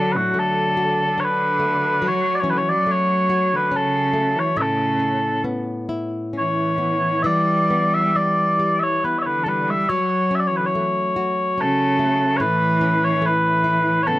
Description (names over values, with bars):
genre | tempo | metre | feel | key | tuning
celtic folk, Celtic slow air | 70 BPM | 3/4 | rubato | unclear | A4 = 440 Hz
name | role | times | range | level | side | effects
mellow small bagpipes | melody | 0.0-14.2 s | F#4 to E5 | -19 LUFS | equal | none
bright cello | second line | 0.0-14.2 s | A2 to G3 | -24 LUFS | right 2 dB | none
flamenco guitar | accompaniment | 0.0-14.2 s | A2 to G4 | -25 LUFS | left 2 dB | none
room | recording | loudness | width
little or no reverb | recorded outdoors, with no room sound | -17 LUFS | side -16 dB against mid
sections
0.0-14.2 A section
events
none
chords
0.0 D; 2.0 F#m; 4.6 Aadd9; 7.2 Em; 9.9 F#m; 12.4 A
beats
0.33 1.18 | 2.02 2.86 3.72 | 4.57 5.43 6.33 | 7.24 8.14 9.03 | 9.89 10.74 11.58 | 12.40 13.24 14.08